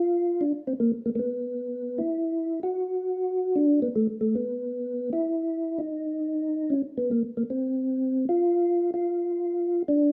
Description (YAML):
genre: jazz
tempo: 152 BPM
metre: 4/4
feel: swing 66% on 8ths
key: unclear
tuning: A4 = 438 Hz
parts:
  - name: percussive tonewheel organ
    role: solo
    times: 0.0-10.1 s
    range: A3 to Gb4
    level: -27 LUFS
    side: equal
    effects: slow rotary speaker, chorus vibrato
room: wet studio reverb, RT60 0.8 s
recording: band playing live in one room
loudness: -27 LUFS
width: mono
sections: 0.0-10.1 A section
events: none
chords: none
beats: 0.01 0.41 0.80 | 1.20 1.59 1.98 2.38 | 2.77 3.16 3.56 3.95 | 4.35 4.74 5.13 5.53 | 5.92 6.32 6.71 7.11 | 7.50 7.90 8.29 8.69 | 9.08 9.47 9.87